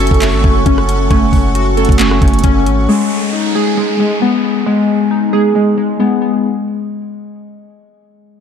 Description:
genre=hip hop, trap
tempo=135 BPM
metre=4/4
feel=half-time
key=G# phrygian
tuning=A4 = 441 Hz
part: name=glassy digital keys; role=accompaniment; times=0.0-6.5 s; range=G#3 to A4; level=-15 LUFS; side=equal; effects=chorus, low-pass filter
part: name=granular cloud pad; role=sustained chords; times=0.0-2.8 s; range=A4 to C#6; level=-25 LUFS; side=left 1 dB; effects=built-in reverb
part: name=Celtic harp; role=arpeggios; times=0.0-6.5 s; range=G#3 to C#4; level=-16 LUFS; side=left 3 dB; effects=low-pass filter, ping-pong delay
part: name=long sustained 808-style bass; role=bass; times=0.0-2.9 s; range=F#1 to G#1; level=-15 LUFS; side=equal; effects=none
part: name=trap drum kit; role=drums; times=0.0-2.8 s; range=handclaps, hi-hat, kick drum, rim click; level=-13 LUFS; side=equal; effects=none
part: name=downlifter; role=sound effects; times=2.9-6.4 s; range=none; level=-25 LUFS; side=right 1 dB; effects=none
room=light reverb, digital ambience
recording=dark, warm production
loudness=-10 LUFS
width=side -7 dB against mid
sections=0.0-2.9 A section; 2.9-6.4 B section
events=none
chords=0.0 F#m; 2.9 G#m

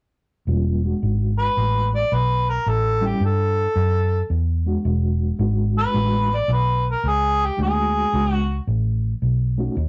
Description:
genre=electric blues shuffle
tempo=110 BPM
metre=4/4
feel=swing 67% on 8ths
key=E mixolydian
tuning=A4 = 440 Hz
part: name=reed electric piano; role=accompaniment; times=0.5-9.8 s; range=G3 to F#4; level=-28 LUFS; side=equal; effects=fast tremolo
part: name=vintage muted fingered electric bass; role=bass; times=0.5-9.9 s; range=E1 to G2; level=-23 LUFS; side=equal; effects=none
part: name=warm harmonica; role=melody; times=1.4-8.7 s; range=G4 to D5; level=-24 LUFS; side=equal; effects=overdrive
room=light reverb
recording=rough rehearsal-room recording, warm saturation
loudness=-21 LUFS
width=mono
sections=0.5-9.9 A section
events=none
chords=0.5 E7; 2.7 A7(no3); 4.8 E7 (rootless); 9.2 B7

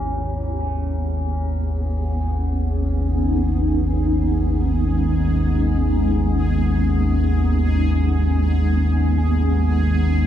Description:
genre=ambient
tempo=free time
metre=none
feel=none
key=G# minor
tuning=A4 = 440 Hz
part: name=granular cloud pad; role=sustained chords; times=0.0-10.3 s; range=G#3 to D#4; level=-24 LUFS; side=equal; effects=built-in reverb
part: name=tubular bells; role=arpeggios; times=0.0-3.6 s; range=C#4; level=-36 LUFS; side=left 1 dB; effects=diffuse ambient delay
part: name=deep rumbling drone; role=drone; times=0.0-10.3 s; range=G#1 to D#2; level=-19 LUFS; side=equal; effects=built-in reverb
part: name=bubbling stepped-filter texture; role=texture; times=0.0-10.3 s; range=G#4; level=-34 LUFS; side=right 1 dB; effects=chorus, built-in reverb
room=moderate huge ambient reverb, RT60 9.0 s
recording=dark, warm production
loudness=-18 LUFS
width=side -10 dB against mid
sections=0.0-10.3 A section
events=fade-in on synth texture 0.0-10.3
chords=0.0 G#m

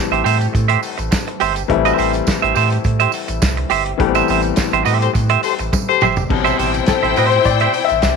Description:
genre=disco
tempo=104 BPM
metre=4/4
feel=straight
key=A minor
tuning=A4 = 438 Hz
part: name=clear baby grand piano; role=accompaniment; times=0.0-8.2 s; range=B2 to E5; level=-20 LUFS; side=left 12 dB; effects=none
part: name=clean electric guitar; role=accompaniment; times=0.1-8.1 s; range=G4 to E5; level=-18 LUFS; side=right 16 dB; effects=none
part: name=warm sub bass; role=bass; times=0.1-8.2 s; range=G1 to A2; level=-20 LUFS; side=right 1 dB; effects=none
part: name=warm soul drum kit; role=drums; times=0.1-8.2 s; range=crash cymbal, hi-hat, kick drum, snare drum, toms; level=-21 LUFS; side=right 1 dB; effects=none
part: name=tambourine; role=percussion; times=0.3-8.2 s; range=none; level=-32 LUFS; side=right 18 dB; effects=none
part: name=warm horn section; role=stabs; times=5.0-6.1 s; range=G4 to C5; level=-18 LUFS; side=left 13 dB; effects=slapback echo
part: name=clear symphonic string section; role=second line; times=6.3-8.2 s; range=E4 to G5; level=-18 LUFS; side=left 9 dB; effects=none
room=light reverb, small room ambience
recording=1960s-style stereo with parts hard left and right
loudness=-14 LUFS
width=side -5 dB against mid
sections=0.0-6.3 A section; 6.3-8.2 B section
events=band accent 4.0-6.3; drum fill 5.7-6.3; grand piano solo 6.3-8.2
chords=0.0 Am7

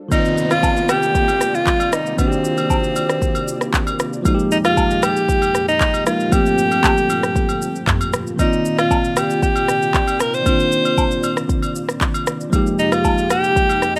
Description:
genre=amapiano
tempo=116 BPM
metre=4/4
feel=straight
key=C minor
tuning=A4 = 441 Hz
part: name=warm analog pad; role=sustained chords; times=0.0-14.0 s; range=F2 to D5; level=-31 LUFS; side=equal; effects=chorus, sidechain pumping
part: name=breathy alto saxophone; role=melody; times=0.1-14.0 s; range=C4 to C5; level=-21 LUFS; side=equal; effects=tape echo
part: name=bell-like tine electric piano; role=accompaniment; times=0.1-14.0 s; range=Eb3 to D5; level=-24 LUFS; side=equal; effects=none
part: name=afro-pop drum kit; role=drums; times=0.1-14.0 s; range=handclaps, kick drum, rim click, shaker, toms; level=-23 LUFS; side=equal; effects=none
part: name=agogo bells and woodblock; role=percussion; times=0.1-13.8 s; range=none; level=-29 LUFS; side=equal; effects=none
part: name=downlifter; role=sound effects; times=0.1-4.3 s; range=none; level=-33 LUFS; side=equal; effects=none
room=little or no reverb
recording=rough home demo mix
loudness=-18 LUFS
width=mono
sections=0.1-14.0 A section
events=none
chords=0.1 Cm11; 4.3 Fm11; 6.3 Gm11; 8.4 Cm11; 12.5 Fm11

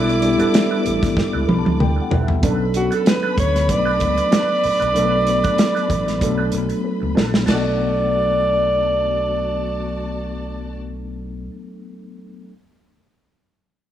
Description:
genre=lush 1970s-style soul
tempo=95 BPM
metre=4/4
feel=swing 54% on 16ths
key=B minor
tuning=A4 = 444 Hz
part: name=warm alto saxophone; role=melody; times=0.0-10.8 s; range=E4 to D5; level=-20 LUFS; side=right 1 dB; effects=none
part: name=warm studio string section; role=second line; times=0.0-10.8 s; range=F#4 to D6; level=-31 LUFS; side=equal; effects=none
part: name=mellow tine electric piano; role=accompaniment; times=0.0-12.5 s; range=F#3 to B5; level=-23 LUFS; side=left 2 dB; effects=medium stereo tremolo
part: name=mellow electric guitar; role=riff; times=0.0-11.5 s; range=D4 to B4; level=-31 LUFS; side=right 5 dB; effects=wah
part: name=overdriven fingered electric bass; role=bass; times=0.0-11.5 s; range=A1 to D2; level=-25 LUFS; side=equal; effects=none
part: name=warm soul drum kit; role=drums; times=0.1-7.6 s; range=crash cymbal, hi-hat, kick drum, snare drum, toms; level=-20 LUFS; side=equal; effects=none
room=light reverb, small room ambience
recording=none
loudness=-16 LUFS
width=side -11 dB against mid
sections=0.0-2.4 A section; 2.4-7.5 B section; 7.5-10.0 C section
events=drum fill 1.2-2.4, 6.8-7.5; tine electric piano fill 1.2-2.4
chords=0.0 G69; 2.4 Bm7

